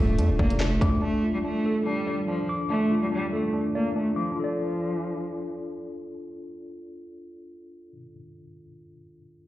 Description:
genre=hip hop, drill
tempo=143 BPM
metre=4/4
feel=half-time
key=D minor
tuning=A4 = 435 Hz
part: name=clear cello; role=melody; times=0.0-5.6 s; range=F3 to Bb3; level=-27 LUFS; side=equal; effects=digital delay
part: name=mellow tine electric piano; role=accompaniment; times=0.0-9.5 s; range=D4 to D6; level=-31 LUFS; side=left 1 dB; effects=medium stereo tremolo
part: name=distorted 808-style bass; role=bass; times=0.0-1.0 s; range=D1 to F2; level=-24 LUFS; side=equal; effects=distortion
part: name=drill drum kit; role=drums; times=0.2-0.9 s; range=handclaps, hi-hat, kick drum, snare drum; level=-25 LUFS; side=equal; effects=none
room=light reverb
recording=played on a big sound system in a bare room, large studio reverb, low-pass filter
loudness=-24 LUFS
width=side -15 dB against mid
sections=0.0-4.4 A section; 4.4-7.7 B section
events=none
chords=0.0 Dm

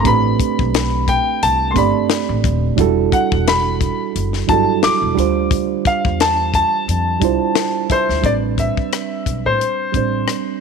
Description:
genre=R&B, neo-soul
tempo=88 BPM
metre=4/4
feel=swing 54% on 16ths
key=A minor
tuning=A4 = 440 Hz
part: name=warm concert grand piano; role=melody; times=0.0-10.6 s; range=C5 to D6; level=-19 LUFS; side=left 3 dB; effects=slapback echo
part: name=reed electric piano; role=accompaniment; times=0.0-10.6 s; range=F#3 to A5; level=-19 LUFS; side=right 15 dB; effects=none
part: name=upright bass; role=bass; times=0.0-10.2 s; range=D#1 to A2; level=-21 LUFS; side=left 1 dB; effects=none
part: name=tight funk drum kit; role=drums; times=0.1-10.5 s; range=hi-hat, kick drum, rim click, snare drum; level=-20 LUFS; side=left 5 dB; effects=none
room=light reverb, studio reverb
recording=1960s-style stereo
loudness=-14 LUFS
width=side -5 dB against mid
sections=0.0-8.2 A section; 8.2-10.6 B section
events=reed electric piano fill 7.2-8.2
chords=0.0 Am11; 2.8 Em11; 5.2 Dm11; 8.2 Am11

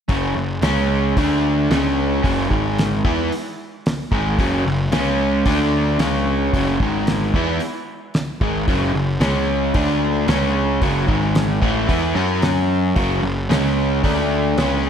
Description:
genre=classic rock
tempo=112 BPM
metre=4/4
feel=straight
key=F# minor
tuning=A4 = 439 Hz
part: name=overdriven semi-hollow guitar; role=riff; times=0.1-14.9 s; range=F#2 to F#4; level=-19 LUFS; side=equal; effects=spring reverb
part: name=fuzz picked electric bass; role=bass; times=0.1-14.9 s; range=F#1 to F#2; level=-23 LUFS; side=equal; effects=overdrive
part: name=cloth-damped thuddy drum kit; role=drums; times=0.1-14.7 s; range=hi-hat, kick drum, snare drum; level=-22 LUFS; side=equal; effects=none
room=moderate lush hall reverb, RT60 1.6 s, small room ambience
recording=big arena sound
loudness=-16 LUFS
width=side -8 dB against mid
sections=0.1-14.9 A section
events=none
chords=0.1 F#5; 0.6 C#5; 1.2 D5; 1.7 C#5; 2.2 F#5; 2.5 G#5; 3.0 F#5; 4.9 C#5; 5.5 D5; 6.0 C#5; 6.5 F#5; 6.8 G#5; 7.3 F#5; 9.2 C#5; 9.8 D5; 10.3 C#5; 10.8 F#5; 11.1 G#5; 11.6 F#m; 13.5 C#5; 14.0 D5

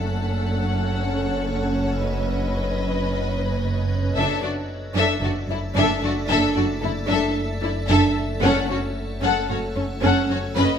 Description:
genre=cinematic, suspense film score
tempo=56 BPM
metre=4/4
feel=straight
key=F# minor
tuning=A4 = 440 Hz
part: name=warm studio violin section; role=melody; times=0.0-10.8 s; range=A4 to F#5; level=-28 LUFS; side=left 6 dB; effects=none
part: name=warm symphonic violin section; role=second line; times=0.0-10.8 s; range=C#4 to B4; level=-28 LUFS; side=left 3 dB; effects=none
part: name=dark symphonic viola section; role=accompaniment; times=0.0-10.8 s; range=C#4 to D4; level=-25 LUFS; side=right 1 dB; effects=none
part: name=icy glass pad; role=sustained chords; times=0.0-10.8 s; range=A4 to F#5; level=-32 LUFS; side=equal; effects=chorus, built-in reverb
part: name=rich symphonic cello section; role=bass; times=0.0-10.6 s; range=F#2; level=-28 LUFS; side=right 2 dB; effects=none
part: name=warm symphonic double bass section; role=bass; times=0.0-10.6 s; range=F#1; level=-28 LUFS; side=right 2 dB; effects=none
part: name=analog drone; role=drone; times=0.0-10.8 s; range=F#1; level=-30 LUFS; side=left 1 dB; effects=chorus
room=wet recital hall reverb, RT60 1.4 s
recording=none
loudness=-20 LUFS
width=side -8 dB against mid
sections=0.0-10.8 A section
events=none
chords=0.0 F#m; 2.0 Badd9/F#; 4.1 Dadd9/F#; 8.4 F#m

